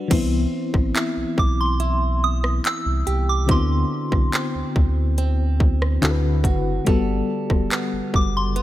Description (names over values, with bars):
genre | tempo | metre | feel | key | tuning
contemporary R&B | 71 BPM | 4/4 | straight | unclear | A4 = 440 Hz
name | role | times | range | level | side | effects
FM electric piano with tremolo | accompaniment | 0.0-8.6 s | D3 to B4 | -25 LUFS | left 5 dB | none
direct-recorded clean electric guitar | arpeggios | 0.0-8.6 s | D3 to B4 | -28 LUFS | right 6 dB | spring reverb, ping-pong delay
warm sub bass | bass | 0.1-8.6 s | E1 to D2 | -22 LUFS | equal | none
trap drum kit | drums | 0.1-8.6 s | crash cymbal, handclaps, hi-hat, kick drum, rim click | -22 LUFS | equal | none
soft synth bell | melody | 1.4-8.6 s | C6 to E6 | -25 LUFS | right 1 dB | chorus, phaser, ping-pong delay
room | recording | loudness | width
little or no reverb | none | -18 LUFS | side -14 dB against mid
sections
0.1-8.6 A section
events
none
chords
0.1 Cmaj7; 3.5 D13; 6.9 Gmaj9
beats
| 0.11 0.95 1.80 2.64 | 3.49 4.33 5.18 6.02 | 6.87 7.71 8.56